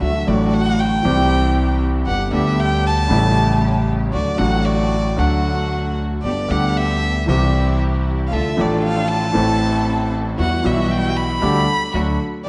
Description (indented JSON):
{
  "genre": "tango",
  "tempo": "116 BPM",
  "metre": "4/4",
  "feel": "rubato",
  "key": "unclear",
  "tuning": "A4 = 438 Hz",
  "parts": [
    { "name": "warm violin", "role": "second line", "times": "0.0-12.5 s", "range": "D5 to B5", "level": "-25 LUFS", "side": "equal", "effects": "none" },
    { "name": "warm concert grand piano", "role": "accompaniment", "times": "0.0-12.5 s", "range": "G1 to A4", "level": "-21 LUFS", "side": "equal", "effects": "none" },
    { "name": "warm studio string section", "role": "stabs", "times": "0.0-12.5 s", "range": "G3 to A4", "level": "-29 LUFS", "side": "equal", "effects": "none" },
    { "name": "upright bass", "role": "bass", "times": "0.0-12.5 s", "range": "G1 to E2", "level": "-24 LUFS", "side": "equal", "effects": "none" }
  ],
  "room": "wet recital hall reverb, RT60 1.5 s",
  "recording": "nothing above 10.3 kHz",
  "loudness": "-18 LUFS",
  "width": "mono",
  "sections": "0.0-12.5 A section",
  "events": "violin solo 0.0-12.5",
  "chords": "0.0 D; 1.1 C; 2.1 G; 3.1 A7; 4.1 D; 6.2 G; 7.3 C; 8.3 Dm; 9.4 Am; 10.4 Emadd9; 11.4 Dsus4; 11.9 D",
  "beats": "| 0.01 0.53 1.05 1.56 | 2.07 2.58 3.10 3.62 | 4.14 4.66 5.18 5.71 | 6.24 6.76 7.28 7.80 | 8.32 8.84 9.35 9.87 | 10.39 10.90 11.42 11.94 | 12.46"
}